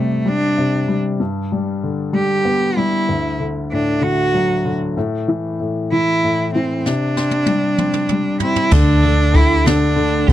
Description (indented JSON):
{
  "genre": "six-eight pop ballad",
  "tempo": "64 BPM (dotted quarters)",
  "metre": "6/8",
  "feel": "straight",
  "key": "unclear",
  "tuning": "A4 = 439 Hz",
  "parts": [
    { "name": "rich cello", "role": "melody", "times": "0.0-10.3 s", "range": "A3 to G4", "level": "-18 LUFS", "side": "right 2 dB", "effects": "none" },
    { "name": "clear baby grand piano", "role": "accompaniment", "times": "0.0-10.3 s", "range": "D2 to C4", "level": "-19 LUFS", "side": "left 3 dB", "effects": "none" },
    { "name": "jazz brush drum kit", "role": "drums", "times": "6.9-10.3 s", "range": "crash cymbal, kick drum, ride cymbal, snare drum, toms", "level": "-18 LUFS", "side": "equal", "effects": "none" },
    { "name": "twelve-string electric guitar", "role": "arpeggios", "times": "8.7-10.3 s", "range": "A3 to G4", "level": "-26 LUFS", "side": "right 15 dB", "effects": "analog chorus" },
    { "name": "vintage muted fingered electric bass", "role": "bass", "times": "8.7-10.3 s", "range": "C2 to D2", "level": "-16 LUFS", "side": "equal", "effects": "none" }
  ],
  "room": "little or no reverb",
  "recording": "dry, close 1970s-style studio recording",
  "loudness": "-15 LUFS",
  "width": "side -13 dB against mid",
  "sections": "0.0-8.7 A section; 8.7-10.3 B section",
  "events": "drum fill 6.8-8.7",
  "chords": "0.0 Csus2; 1.2 G; 3.1 D; 5.0 A5; 6.8 Csus2; 8.7 Dsus4"
}